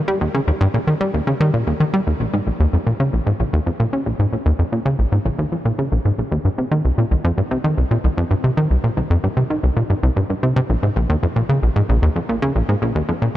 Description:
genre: ambient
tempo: 113 BPM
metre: 4/4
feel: straight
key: Bb dorian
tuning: A4 = 440 Hz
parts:
  - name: plucky analog bass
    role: solo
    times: 0.1-13.3 s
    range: Bb1 to G3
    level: -16 LUFS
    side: equal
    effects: tape echo
room: moderate huge ambient reverb, RT60 7.8 s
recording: none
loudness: -16 LUFS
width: side -14 dB against mid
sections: 0.0-13.4 A section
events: none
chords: none

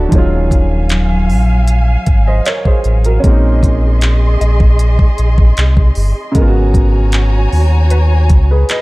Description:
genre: contemporary R&B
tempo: 77 BPM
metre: 4/4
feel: straight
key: unclear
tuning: A4 = 440 Hz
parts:
  - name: warm baby grand piano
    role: accompaniment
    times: 0.0-8.8 s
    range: C#3 to A5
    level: -19 LUFS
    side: right 1 dB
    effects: none
  - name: dark studio string section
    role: sustained chords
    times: 0.0-8.8 s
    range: F#3 to B#5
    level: -21 LUFS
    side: equal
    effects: none
  - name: sub bass with octave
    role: bass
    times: 0.0-8.6 s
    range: D#1 to D#2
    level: -11 LUFS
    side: equal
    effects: none
  - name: mallet-like synth pluck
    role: texture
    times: 0.0-8.8 s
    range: B4 to D#5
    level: -28 LUFS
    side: left 1 dB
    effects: none
  - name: smooth R&B drum kit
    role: drums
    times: 0.1-8.8 s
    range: handclaps, hi-hat, kick drum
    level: -12 LUFS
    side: equal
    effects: none
room: digital ambience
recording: dark, warm production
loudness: -9 LUFS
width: side -21 dB against mid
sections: 0.0-8.8 A section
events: none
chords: 0.1 D#m11; 3.2 A#m11; 6.4 G#m11

